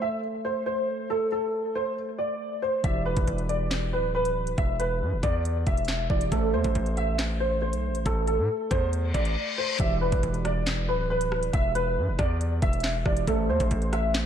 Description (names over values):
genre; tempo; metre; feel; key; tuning
hip hop, drill; 138 BPM; 4/4; half-time; E minor; A4 = 443 Hz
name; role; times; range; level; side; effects
dark concert grand piano; melody; 0.0-14.1 s; A4 to E5; -28 LUFS; equal; ensemble chorus, ping-pong delay
mellow tine electric piano; accompaniment; 0.0-14.3 s; E3 to E5; -34 LUFS; right 4 dB; analog chorus
distorted 808-style bass; bass; 2.8-14.3 s; D1 to A2; -28 LUFS; equal; distortion
drill drum kit; drums; 2.8-14.2 s; handclaps, hi-hat, kick drum, rim click, snare drum; -28 LUFS; equal; vintage 12-bit sampler grit
reverse cymbal and impact; sound effects; 9.1-11.5 s; none; -34 LUFS; left 4 dB; none
room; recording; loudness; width
light reverb; none; -24 LUFS; side -9 dB against mid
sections
0.0-9.8 A section; 9.8-14.3 B section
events
reverse cymbal 9.1-9.8; silent gap 9.4-9.8; impact 9.8-11.5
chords
0.0 Am; 2.8 Em7; 6.3 Am; 9.8 Em7; 13.3 Am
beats
0.23 0.67 | 1.10 1.53 1.97 2.40 | 2.84 3.27 3.71 4.14 | 4.58 5.01 5.45 5.88 | 6.32 6.75 7.19 7.62 | 8.06 8.49 8.93 9.36 | 9.80 10.23 10.66 11.10 | 11.54 11.97 12.40 12.84 | 13.27 13.71 14.14